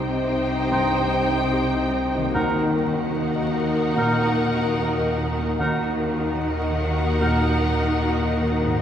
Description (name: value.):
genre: cinematic, emotional film score for orchestra.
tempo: 74 BPM.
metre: 4/4.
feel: rubato.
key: unclear.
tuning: A4 = 440 Hz.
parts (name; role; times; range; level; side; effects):
warm symphonic violin section; melody; 0.0-8.8 s; Gb5 to G5; -30 LUFS; left 1 dB; none.
warm symphonic violin section; second line; 0.0-8.8 s; Bb4 to C5; -31 LUFS; left 2 dB; none.
felt-muted upright piano; accompaniment; 0.0-8.8 s; C2 to Eb5; -27 LUFS; left 1 dB; none.
warm symphonic viola section; accompaniment; 0.0-8.8 s; Eb4; -31 LUFS; right 1 dB; none.
mellow French horn section; sustained chords; 0.0-8.8 s; Bb3 to Gb4; -29 LUFS; left 4 dB; none.
rich symphonic cello section; bass; 0.0-8.8 s; C3 to Eb3; -30 LUFS; right 2 dB; none.
rich symphonic double bass section; bass; 0.0-8.8 s; C2 to Eb2; -26 LUFS; right 1 dB; none.
hollow concert flute; second line; 0.7-7.6 s; Gb5 to G5; -35 LUFS; equal; none.
warm clarinet; second line; 0.7-7.5 s; Eb4; -34 LUFS; right 1 dB; none.
warm oboe; second line; 0.7-7.5 s; Bb4 to C5; -34 LUFS; right 1 dB; none.
concert harp; arpeggios; 2.2-8.8 s; Ab2 to Bb4; -33 LUFS; left 4 dB; none.
room: wet cathedral reverb, RT60 6.2 s.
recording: recorded in a church or concert hall, vinyl crackle.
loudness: -20 LUFS.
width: side -9 dB against mid.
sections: 0.0-8.8 A section.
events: none.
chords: 0.0 Cm; 2.3 Ebm.